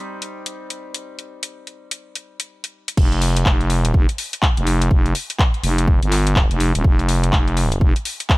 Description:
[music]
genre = bass house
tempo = 124 BPM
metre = 4/4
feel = swing 61% on 16ths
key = unclear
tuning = A4 = 440 Hz
[part]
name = bright baby grand piano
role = stabs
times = 0.0-3.0 s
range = G3 to Eb4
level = -36 LUFS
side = left 1 dB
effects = sidechain pumping, ping-pong delay
[part]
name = house drum kit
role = drums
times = 0.2-8.4 s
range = crash cymbal, handclaps, hi-hat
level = -23 LUFS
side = left 1 dB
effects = none
[part]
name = growling FM bass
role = bass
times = 3.0-7.9 s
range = Eb1 to G1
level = -18 LUFS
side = equal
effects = tube saturation, sidechain pumping
[part]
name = electronic kick drum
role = drums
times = 3.0-8.4 s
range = none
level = -16 LUFS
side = equal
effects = none
[sound]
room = little or no reverb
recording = none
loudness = -15 LUFS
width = side -22 dB against mid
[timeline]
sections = 0.0-3.0 A section; 3.0-8.4 B section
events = filter sweep on grand piano 0.0-3.0; drop 3.0-8.4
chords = 0.0 Cm; 3.0 N.C.

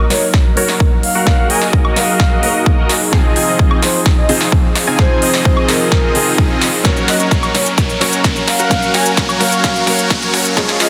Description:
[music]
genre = EDM, festival progressive house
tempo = 129 BPM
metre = 4/4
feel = straight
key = unclear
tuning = A4 = 442 Hz
[part]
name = dark grand piano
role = accompaniment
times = 0.0-10.9 s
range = F3 to Bb4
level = -24 LUFS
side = equal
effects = sidechain pumping, dub echo
[part]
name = lush unison pad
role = sustained chords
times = 0.0-10.9 s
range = F3 to Bb4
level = -26 LUFS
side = equal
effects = none
[part]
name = dense compressed supersaw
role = riff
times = 0.0-10.9 s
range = C4 to Ab5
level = -21 LUFS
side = equal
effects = sidechain pumping, low-pass filter, dub echo
[part]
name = riser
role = sound effects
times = 4.2-10.9 s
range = none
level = -26 LUFS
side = equal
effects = none
[part]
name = breathy flute-like synth lead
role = melody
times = 0.1-10.9 s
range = Bb4 to Ab5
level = -23 LUFS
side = equal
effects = chorus, vintage 12-bit sampler grit, dub echo
[part]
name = big-room dance drum kit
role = drums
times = 0.1-10.9 s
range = cabasa, hi-hat, snare drum, woodblock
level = -20 LUFS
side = equal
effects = high-pass filter on hats, high-pass filter on snare, high-pass filter on perc, high-pass filter on room
[part]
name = electronic kick drum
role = drums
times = 0.3-10.7 s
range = none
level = -16 LUFS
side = equal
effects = none
[sound]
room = moderate huge ambient reverb, RT60 4.2 s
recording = dense, heavily limited modern master, high-pass filter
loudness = -13 LUFS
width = mono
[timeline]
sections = 0.0-10.9 A section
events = build-up 0.0-10.9; drum fill 0.0-10.9; filter sweep 0.0-10.9; riser 4.2-10.9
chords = 0.0 Ebm; 3.1 Fm7; 6.8 Gb

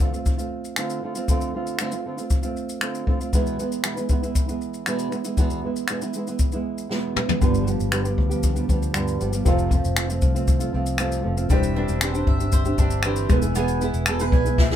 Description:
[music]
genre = acoustic pop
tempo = 117 BPM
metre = 4/4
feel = straight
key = unclear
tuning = A4 = 440 Hz
[part]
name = nylon-string guitar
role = accompaniment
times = 0.0-14.8 s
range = E2 to G#4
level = -26 LUFS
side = right 3 dB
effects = none
[part]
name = jazz brush drum kit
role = drums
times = 0.0-14.8 s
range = finger snaps, kick drum, shaker, snare drum, toms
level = -22 LUFS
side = left 1 dB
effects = none
[part]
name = felt-muted upright piano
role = accompaniment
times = 7.4-14.8 s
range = G3 to E5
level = -31 LUFS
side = left 5 dB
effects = none
[part]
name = vintage muted fingered electric bass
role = bass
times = 7.4-14.8 s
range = E1 to D2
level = -26 LUFS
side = left 1 dB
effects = none
[part]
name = bowl-back mandolin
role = arpeggios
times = 11.5-14.8 s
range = G3 to G#5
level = -29 LUFS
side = right 4 dB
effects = none
[sound]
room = light reverb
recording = band playing live in one room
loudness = -20 LUFS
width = side -10 dB against mid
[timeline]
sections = 0.0-7.4 A section; 7.4-14.8 B section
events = drum fill 6.9-7.4, 14.6; felt piano fill 14.1-14.8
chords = 0.0 Dm7; 3.3 E; 7.4 G7; 9.5 F; 11.5 Cadd9/E; 13.3 E

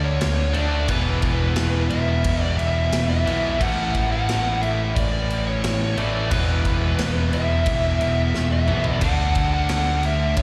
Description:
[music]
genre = hard rock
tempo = 89 BPM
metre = 4/4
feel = straight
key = E mixolydian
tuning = A4 = 440 Hz
[part]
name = nasal lead guitar with a parked wah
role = melody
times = 0.0-10.4 s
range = B4 to F#5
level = -28 LUFS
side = equal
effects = overdrive
[part]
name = cranked stack guitar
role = riff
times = 0.0-10.4 s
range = E2 to D4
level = -32 LUFS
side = equal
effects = overdrive, slapback echo
[part]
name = heavy high-gain guitar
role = riff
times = 0.0-10.4 s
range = A2 to F#4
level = -34 LUFS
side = equal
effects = distortion, slapback echo
[part]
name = overdriven semi-hollow guitar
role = riff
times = 0.0-10.4 s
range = E2 to D4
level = -32 LUFS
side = equal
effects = slapback echo
[part]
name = overdriven picked electric bass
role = bass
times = 0.0-10.4 s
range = E1 to D2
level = -25 LUFS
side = equal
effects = none
[part]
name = big rock drum kit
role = drums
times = 0.2-10.4 s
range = crash cymbal, kick drum, snare drum, toms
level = -29 LUFS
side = equal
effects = none
[sound]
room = studio reverb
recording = live gig heard through the venue's PA, recital hall reverb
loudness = -21 LUFS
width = mono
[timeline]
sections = 0.0-10.4 A section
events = drum fill 8.3-9.0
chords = 0.0 D; 0.9 E; 3.6 A; 6.3 E; 9.0 D

